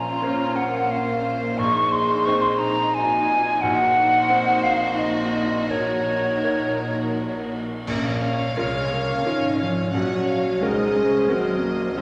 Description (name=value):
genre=cinematic, emotional film score for orchestra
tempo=88 BPM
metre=3/4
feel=rubato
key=Bb minor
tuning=A4 = 440 Hz
part: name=warm symphonic violin section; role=melody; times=0.0-12.0 s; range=Bb4 to Gb5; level=-35 LUFS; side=equal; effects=none
part: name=hollow concert flute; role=second line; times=0.0-7.5 s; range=Db5 to Db6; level=-24 LUFS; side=equal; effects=none
part: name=warm chamber violin section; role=second line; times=0.0-12.0 s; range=Eb4 to Db5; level=-35 LUFS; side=equal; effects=none
part: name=bright concert grand piano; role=accompaniment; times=0.0-12.0 s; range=Bb1 to C5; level=-32 LUFS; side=equal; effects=none
part: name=dark symphonic viola section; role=accompaniment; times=0.0-12.0 s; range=Ab3 to Eb4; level=-33 LUFS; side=equal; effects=none
part: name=mellow French horn section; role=sustained chords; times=0.0-12.0 s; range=Bb3 to Bb4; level=-30 LUFS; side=equal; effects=none
part: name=warm studio cello section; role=bass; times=0.0-12.0 s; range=Bb2 to Ab3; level=-33 LUFS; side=equal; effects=none
part: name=warm symphonic double bass section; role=bass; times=0.0-12.0 s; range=Ab1 to Eb2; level=-36 LUFS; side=equal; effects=none
part: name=cymbal swell, clash cymbals and concert bass drum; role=percussion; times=3.6-9.2 s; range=none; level=-40 LUFS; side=equal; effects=none
room=wet scoring stage reverb, RT60 1.6 s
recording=none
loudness=-22 LUFS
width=mono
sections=0.0-7.9 A section; 7.9-12.0 B section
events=band accent 7.9-8.6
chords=0.0 Bbmadd9; 1.6 Ab/Bb; 3.6 Cdim/Bb; 5.7 Ebm7/Bb; 7.9 Bbm; 9.9 Gb/Bb